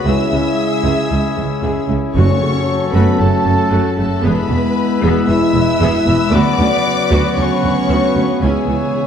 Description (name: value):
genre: cinematic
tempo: 115 BPM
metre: 4/4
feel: straight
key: F# minor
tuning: A4 = 440 Hz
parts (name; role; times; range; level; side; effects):
- warm symphonic violin section; melody; 0.0-9.1 s; G#5 to E6; -25 LUFS; left 5 dB; none
- warm symphonic violin section; second line; 0.0-9.1 s; G#4 to E5; -23 LUFS; left 3 dB; none
- mellow French horn section; sustained chords; 0.0-9.1 s; C#3 to E4; -22 LUFS; left 4 dB; none
- pipe organ, foundations; sustained chords; 0.0-9.1 s; G#3 to F#5; -22 LUFS; left 1 dB; none
- warm trombone section; sustained chords; 0.0-9.1 s; G#3 to E4; -22 LUFS; right 3 dB; none
- rich studio viola section; accompaniment; 0.1-8.8 s; C#3 to G#4; -23 LUFS; equal; none
- mellow trumpet section; stabs; 0.1-9.1 s; G#4 to C#5; -24 LUFS; left 1 dB; none
- rich symphonic cello section; bass; 0.1-8.8 s; C#2 to F#2; -20 LUFS; right 2 dB; none
- rich symphonic double bass section; bass; 0.1-8.8 s; E1 to D2; -20 LUFS; right 2 dB; none
- timpani; percussion; 2.2-2.9, 8.4-9.1 s; F#2 to C#3; -21 LUFS; equal; none
room: wet scoring stage reverb, RT60 2.1 s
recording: dark, warm production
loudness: -12 LUFS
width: side -8 dB against mid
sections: 0.0-9.1 A section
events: timpani fill 8.4-9.1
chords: 0.1 C#m; 2.2 F#m; 4.2 E; 6.3 Bmadd9/D; 8.4 C#m